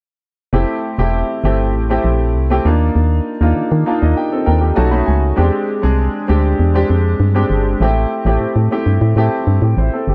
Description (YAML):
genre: polished 1980s jazz-funk pop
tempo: 99 BPM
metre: 4/4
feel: straight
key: F major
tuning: A4 = 439 Hz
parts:
  - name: warm baby grand piano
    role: accompaniment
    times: 0.5-10.1 s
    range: G#3 to B5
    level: -19 LUFS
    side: equal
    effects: lush chorus
  - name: organ-like FM bass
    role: bass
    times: 0.5-10.1 s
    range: E1 to Eb3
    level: -16 LUFS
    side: equal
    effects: none
room: little or no reverb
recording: dry, close 1970s-style studio recording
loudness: -15 LUFS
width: mono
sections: 0.5-10.1 A section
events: grand piano fill 3.6-5.4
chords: 0.5 Fmaj9 (rootless); 2.7 Ebmaj9#11; 4.8 B9; 5.4 E7alt; 7.8 Am7